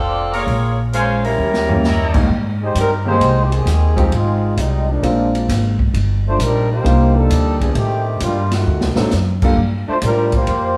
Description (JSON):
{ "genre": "jazz, big band swing", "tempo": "132 BPM", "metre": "4/4", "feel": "swing 68% on 8ths", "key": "unclear", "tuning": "A4 = 438 Hz", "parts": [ { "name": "mellow saxophone section", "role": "melody", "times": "0.0-2.1 s", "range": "G3 to D5", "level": "-22 LUFS", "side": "equal", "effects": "none" }, { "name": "upright bass", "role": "bass", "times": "0.0-10.8 s", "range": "F1 to A2", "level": "-20 LUFS", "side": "equal", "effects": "none" }, { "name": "brilliant trumpet section", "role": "stabs", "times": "0.3-2.3 s", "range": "Fb4 to Bb5", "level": "-28 LUFS", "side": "equal", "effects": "none" }, { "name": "swinging big-band drum kit", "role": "drums", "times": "0.3-10.6 s", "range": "crash cymbal, hi-hat, kick drum, ride cymbal, snare drum, toms", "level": "-24 LUFS", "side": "equal", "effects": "none" }, { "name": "clear baby grand piano", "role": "accompaniment", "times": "1.7-9.6 s", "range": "Ab2 to A4", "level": "-22 LUFS", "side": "equal", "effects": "none" }, { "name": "bright trombone section", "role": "second line", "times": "2.6-10.8 s", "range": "Eb3 to C5", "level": "-21 LUFS", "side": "equal", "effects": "none" } ], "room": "moderate echo chamber reverb, RT60 1.6 s", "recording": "heard from further back in the room", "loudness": "-16 LUFS", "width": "mono", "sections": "0.0-2.3 A section; 2.3-10.8 B section", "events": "drum fill 1.4-1.8, 8.7-9.1; trombone section solo 2.3-10.8", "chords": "0.5 Bbm7; 1.4 Eb7b9; 2.3 Abmaj7; 4.1 Fm9; 5.0 Bb7; 5.9 Ebmaj7; 7.8 Am7b5; 8.7 D7b9; 9.6 Gm7", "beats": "0.02 | 0.47 0.93 1.38 1.84 | 2.29 2.75 3.20 3.66 | 4.11 4.57 5.02 5.48 | 5.93 6.39 6.84 7.30 | 7.75 8.21 8.66 9.12 | 9.57 10.03 10.48" }